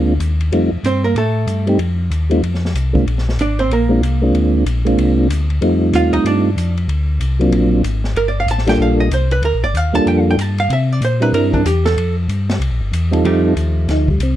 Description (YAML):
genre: soul jazz organ trio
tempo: 189 BPM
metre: 4/4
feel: swing 62% on 8ths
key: F mixolydian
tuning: A4 = 440 Hz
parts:
  - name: percussive tonewheel organ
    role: melody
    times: 0.0-14.4 s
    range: F#3 to Bb4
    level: -16 LUFS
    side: right 1 dB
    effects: chorus vibrato, slow rotary speaker, plate reverb
  - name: mellow tonewheel organ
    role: bass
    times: 0.0-14.4 s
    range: G1 to C3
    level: -16 LUFS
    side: left 1 dB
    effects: slow rotary speaker
  - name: vintage drum kit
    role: drums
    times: 0.2-14.3 s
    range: hi-hat, kick drum, ride cymbal, snare drum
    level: -28 LUFS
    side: left 1 dB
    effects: none
  - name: archtop guitar, miked and amplified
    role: accompaniment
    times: 0.9-14.1 s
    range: F3 to A5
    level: -19 LUFS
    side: right 3 dB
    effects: none
room: light reverb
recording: dark, warm production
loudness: -13 LUFS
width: side -12 dB against mid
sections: 0.0-13.2 A section; 13.2-14.4 A section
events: hollow-body jazz guitar solo 0.0-13.2; tonewheel organ solo 13.2-14.4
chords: 0.0 Bb9; 0.5 F9; 3.1 Bb9; 5.6 F9; 6.9 D7alt; 8.2 Gm7; 10.7 C9; 12.0 Fsus2; 12.6 C7; 13.2 F9